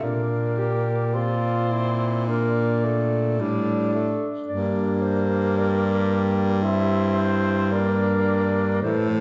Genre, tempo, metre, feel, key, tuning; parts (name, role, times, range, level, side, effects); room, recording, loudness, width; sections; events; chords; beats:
classical, lyrical piece for single-reed quartet; 55 BPM; 4/4; rubato; A4 = 438 Hz
dark clarinet; melody; 0.0-9.2 s; C5 to E5; -33 LUFS; equal
warm alto saxophone; second line; 0.0-9.2 s; E3 to G4; -32 LUFS; equal
warm tenor saxophone; accompaniment; 0.0-9.2 s; G3 to C4; -28 LUFS; equal
bright baritone saxophone; bass; 0.0-9.2 s; G2 to Bb2; -25 LUFS; equal
wet recital hall reverb, RT60 1.4 s; heard from further back in the room, nothing above 7.9 kHz; -23 LUFS; mono
0.0-9.2 A section
0.0 Bb; 4.5 Em7b5/G
| 0.03 1.15 2.29 3.40 | 4.48 5.57 6.63 7.73 | 8.82